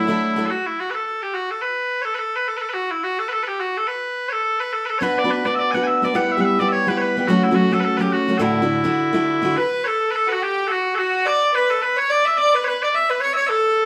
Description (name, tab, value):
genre	celtic folk, Celtic reel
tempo	212 BPM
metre	4/4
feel	swing 56% on 8ths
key	D major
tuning	A4 = 440 Hz
part	loud bright bagpipes	melody	0.0-13.9 s	E4 to G#5	-22 LUFS	equal	none
part	bright fiddle	second line	0.0-0.2, 9.6-13.9 s	E4 to E5	-25 LUFS	equal	none
part	picked steel-string acoustic guitar	accompaniment	0.0-0.5, 5.0-9.6 s	D2 to B4	-21 LUFS	equal	none
room	wet studio reverb, RT60 0.8 s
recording	band playing live in one room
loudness	-20 LUFS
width	mono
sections	0.5-9.6 A section; 9.6-13.9 B section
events	none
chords	0.5 N.C.; 5.0 Bm; 6.2 Em/G; 7.3 F#m; 8.4 Dadd9; 9.6 N.C.